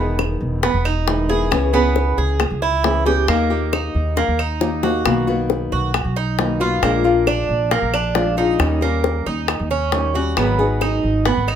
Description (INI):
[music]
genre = latin, Cuban son and guajira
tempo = 136 BPM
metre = 4/4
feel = straight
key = unclear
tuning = A4 = 440 Hz
[part]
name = flamenco guitar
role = accompaniment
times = 0.0-11.3 s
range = B2 to G#4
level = -21 LUFS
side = left 4 dB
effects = none
[part]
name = Cuban tres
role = arpeggios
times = 0.0-11.6 s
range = A#3 to G#4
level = -21 LUFS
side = right 5 dB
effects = none
[part]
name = upright bass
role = bass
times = 0.0-11.6 s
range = E1 to D#2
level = -21 LUFS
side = equal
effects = none
[part]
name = bongos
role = percussion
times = 0.2-11.6 s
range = none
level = -23 LUFS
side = left 7 dB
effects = none
[part]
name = claves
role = percussion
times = 0.2-11.6 s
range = none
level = -28 LUFS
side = right 3 dB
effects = none
[sound]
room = moderate studio reverb, RT60 0.5 s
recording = faint mains hum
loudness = -16 LUFS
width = side -9 dB against mid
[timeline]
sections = 0.0-11.6 A section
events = drum fill 4.2-5.1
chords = 0.0 Emaj7; 1.5 C#m7; 3.3 D#; 5.1 Bmaj7; 6.8 A#7; 8.6 D#7; 10.4 G#m7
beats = 0.19 0.63 1.07 | 1.52 1.96 2.40 2.85 | 3.29 3.73 4.17 4.62 | 5.06 5.50 5.94 6.39 | 6.83 7.27 7.71 8.16 | 8.60 9.04 9.49 9.93 | 10.37 10.82 11.26